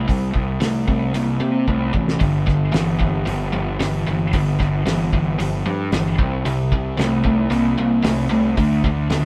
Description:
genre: classic rock.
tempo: 113 BPM.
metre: 4/4.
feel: straight.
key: G dorian.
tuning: A4 = 440 Hz.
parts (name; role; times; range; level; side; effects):
biting overdriven guitar; riff; 0.0-9.2 s; G2 to B3; -24 LUFS; equal; none.
fuzz picked electric bass; bass; 0.0-9.2 s; G1 to C3; -24 LUFS; equal; overdrive.
cloth-damped thuddy drum kit; drums; 0.1-9.2 s; hi-hat, kick drum, snare drum; -25 LUFS; equal; none.
overdriven electric guitar; riff; 2.2-9.2 s; G2 to B3; -28 LUFS; equal; none.
room: moderate stone room reverb, RT60 1.3 s.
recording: band playing live in one room.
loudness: -20 LUFS.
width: mono.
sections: 0.0-9.2 A section.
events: drum fill 1.7-2.2.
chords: 0.0 C5; 2.2 G5; 6.2 C5; 8.6 D5.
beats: | 0.09 0.62 1.15 1.68 | 2.21 2.74 3.27 3.80 | 4.33 4.86 5.39 5.92 | 6.45 6.98 7.51 8.04 | 8.57 9.10.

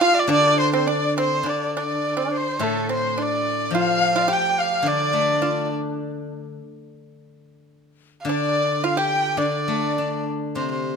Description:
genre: chinese traditional, Chinese chamber ensemble.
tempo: 106 BPM.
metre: 2/4.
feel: rubato.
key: D yu mode.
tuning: A4 = 441 Hz.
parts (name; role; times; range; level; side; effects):
warm erhu; melody; 0.0-5.7, 8.2-11.0 s; A4 to G5; -23 LUFS; right 3 dB; none.
dizi; second line; 0.0-5.7, 8.3-10.2 s; A4 to G5; -26 LUFS; left 10 dB; none.
pipa; second line; 0.0-5.7, 8.3-10.2 s; A3 to G4; -26 LUFS; right 6 dB; none.
steel-string zither; accompaniment; 0.3-11.0 s; A2 to D4; -26 LUFS; left 2 dB; none.
room: light reverb.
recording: close, detailed microphones.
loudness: -19 LUFS.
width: side -6 dB against mid.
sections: 0.0-1.5 A section; 1.5-10.6 B section.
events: none.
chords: none.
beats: | 0.30 0.88 | 1.46 2.05 | 2.62 3.18 | 3.74 4.29 | 4.85 5.42 | 6.00 6.59 | 7.15 7.71 | 8.28 8.84 | 9.40 9.98 | 10.58.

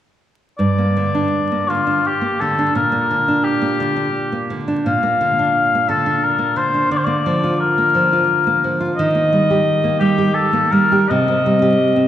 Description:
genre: romantic duo for oboe and classical guitar.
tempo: 86 BPM.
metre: 3/4.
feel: uneven beats, rubato.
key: G minor.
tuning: A4 = 440 Hz.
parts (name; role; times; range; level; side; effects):
warm oboe; melody; 0.6-12.1 s; F4 to F5; -17 LUFS; left 3 dB; none.
nylon-string guitar; accompaniment; 0.6-12.1 s; G2 to G4; -18 LUFS; right 2 dB; none.
room: wet church reverb, RT60 2.7 s.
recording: recorded in a church or concert hall, vinyl crackle.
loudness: -14 LUFS.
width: side -11 dB against mid.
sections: 0.6-12.1 A section.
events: none.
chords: 0.6 Gm; 2.7 Gm/Bb; 6.9 Bb/D; 9.0 Eb; 11.1 Cm.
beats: | 0.59 1.32 2.05 | 2.75 3.44 4.14 | 4.85 5.55 6.22 | 6.90 7.59 8.28 | 8.96 9.65 10.34 | 11.11 11.81.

